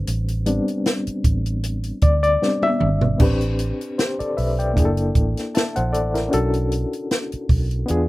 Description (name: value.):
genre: lush 1970s-style soul.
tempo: 77 BPM.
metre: 4/4.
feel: swing 54% on 16ths.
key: unclear.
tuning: A4 = 442 Hz.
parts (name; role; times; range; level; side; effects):
barky reed electric piano; accompaniment; 0.0-8.1 s; G3 to A5; -22 LUFS; left 2 dB; overdrive, fast tremolo.
vintage muted fingered electric bass; bass; 0.1-8.1 s; F#1 to E2; -22 LUFS; right 1 dB; none.
compact cocktail drum kit; drums; 0.1-8.1 s; crash cymbal, hi-hat, kick drum, snare drum, toms; -21 LUFS; right 1 dB; none.
room: little or no reverb.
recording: rough home demo mix.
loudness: -18 LUFS.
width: side -18 dB against mid.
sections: 0.0-3.2 A section; 3.2-8.1 B section.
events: reed electric piano solo 0.0-3.2; drum fill 2.4-3.2.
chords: 0.0 Am11; 4.8 F#7alt; 6.3 Bm9.